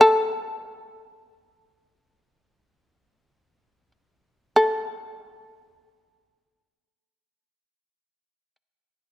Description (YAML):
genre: japanese traditional, Japanese chamber music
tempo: free time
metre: none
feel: none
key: unclear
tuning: A4 = 438 Hz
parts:
  - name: shamisen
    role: solo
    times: 0.0-8.6 s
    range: A4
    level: -17 LUFS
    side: left 1 dB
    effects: none
room: moderate concert hall reverb, RT60 2.0 s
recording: none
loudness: -21 LUFS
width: side -15 dB against mid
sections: 0.0-4.6 A section; 4.6-9.1 B section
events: slowing down 0.0-4.6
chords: none